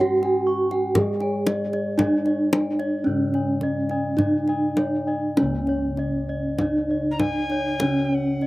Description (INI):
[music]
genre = Javanese gamelan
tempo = 49-63 BPM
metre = 4/4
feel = straight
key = unclear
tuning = A4 = 440 Hz
[part]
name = gamelan-type bronze metallophone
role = melody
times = 0.0-8.5 s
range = C#4 to G#4-40c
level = -22 LUFS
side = right 1 dB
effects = none
[part]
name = gamelan-type bronze metallophone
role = accompaniment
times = 0.0-8.5 s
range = C#3 to C#4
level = -32 LUFS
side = left 1 dB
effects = none
[part]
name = gamelan-type bossed gongs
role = arpeggios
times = 0.0-8.5 s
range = C#5 to G#5-40c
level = -33 LUFS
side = left 4 dB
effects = slapback echo
[part]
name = gamelan-type bronze metallophone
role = arpeggios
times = 0.0-8.5 s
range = C#5 to C#6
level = -32 LUFS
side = right 2 dB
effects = none
[part]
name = gamelan-type bossed gongs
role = bass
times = 0.0-8.5 s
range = C#2 to G#4-40c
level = -31 LUFS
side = left 1 dB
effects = none
[part]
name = kendang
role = percussion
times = 0.2-8.5 s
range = none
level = -26 LUFS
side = left 1 dB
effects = none
[part]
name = breathy alto recorder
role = second line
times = 7.1-8.5 s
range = F#5+28c to A#5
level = -29 LUFS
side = left 1 dB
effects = slapback echo
[sound]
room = little or no reverb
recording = recorded outdoors, with no room sound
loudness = -20 LUFS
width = side -18 dB against mid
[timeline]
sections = 0.0-5.4 A section; 5.4-8.5 B section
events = none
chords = none